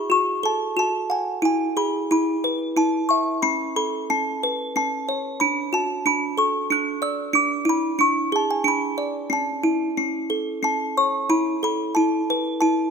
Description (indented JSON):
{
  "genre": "children's music, lullaby",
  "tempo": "91 BPM",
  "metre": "3/4",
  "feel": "straight",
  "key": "A major",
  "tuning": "A4 = 435 Hz",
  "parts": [
    { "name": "music box", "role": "solo", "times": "0.0-12.9 s", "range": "C#4 to F#6", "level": "-20 LUFS", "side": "equal", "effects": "none" }
  ],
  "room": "moderate scoring stage reverb, RT60 2.0 s",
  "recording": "minimal, uncompressed stereo recording",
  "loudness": "-20 LUFS",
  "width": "side -6 dB against mid",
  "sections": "0.0-11.3 A section; 11.3-12.9 A section",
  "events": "none",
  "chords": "0.0 F#madd9; 1.4 E; 3.4 Aadd9; 5.4 D; 7.3 E7; 9.3 A; 11.3 Asus2"
}